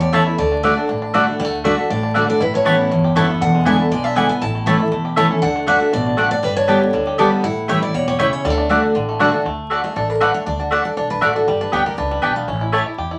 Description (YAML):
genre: bluegrass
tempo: 238 BPM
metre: 4/4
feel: straight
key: D major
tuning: A4 = 440 Hz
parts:
  - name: picked steel-string acoustic guitar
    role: melody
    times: 0.0-9.2 s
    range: A4 to A5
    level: -24 LUFS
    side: equal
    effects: none
  - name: picked steel-string acoustic guitar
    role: accompaniment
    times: 0.0-12.7 s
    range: E2 to F5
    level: -22 LUFS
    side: equal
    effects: none
  - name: bluegrass banjo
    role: arpeggios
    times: 0.0-13.2 s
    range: D3 to G4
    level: -26 LUFS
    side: equal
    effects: none
  - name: upright bass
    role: bass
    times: 0.0-13.2 s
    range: E1 to E2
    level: -30 LUFS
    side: equal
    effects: none
  - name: mandolin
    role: stabs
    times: 0.1-12.8 s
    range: A3 to A5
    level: -20 LUFS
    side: equal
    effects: none
room: wet studio ambience, RT60 0.5 s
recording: vinyl crackle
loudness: -17 LUFS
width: mono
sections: 0.0-1.4 A section; 1.4-9.5 B section; 9.5-13.2 C section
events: steel-string acoustic guitar solo 9.5-13.2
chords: 0.4 D; 2.4 Aadd9; 3.4 E7; 4.4 A; 5.4 D; 6.4 Gadd9; 7.4 A7; 8.4 D; 11.5 G; 12.5 A